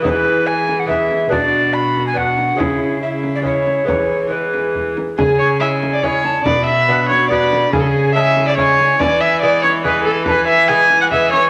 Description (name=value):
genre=classical, renaissance-style consort dance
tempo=141 BPM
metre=3/4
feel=straight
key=unclear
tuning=A4 = 439 Hz
part: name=alto recorder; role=melody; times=0.0-11.5 s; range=G#4 to B5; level=-22 LUFS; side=equal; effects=none
part: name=warm viola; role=second line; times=0.0-11.5 s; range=E4 to G#5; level=-18 LUFS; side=equal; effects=none
part: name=lute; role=accompaniment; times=0.0-11.5 s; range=B2 to F#4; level=-24 LUFS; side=equal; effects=none
part: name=rich cello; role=bass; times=0.0-11.5 s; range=B2 to E3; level=-25 LUFS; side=equal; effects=none
part: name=frame drum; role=percussion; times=0.0-11.5 s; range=none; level=-28 LUFS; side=equal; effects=none
room=wet stone room reverb, RT60 1.3 s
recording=none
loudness=-15 LUFS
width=mono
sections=0.0-5.2 A section; 5.2-11.5 A section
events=none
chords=0.0 E; 1.3 Bm; 2.6 C#m; 3.9 E; 5.2 C#m; 6.5 Bm; 7.7 C#m; 9.0 E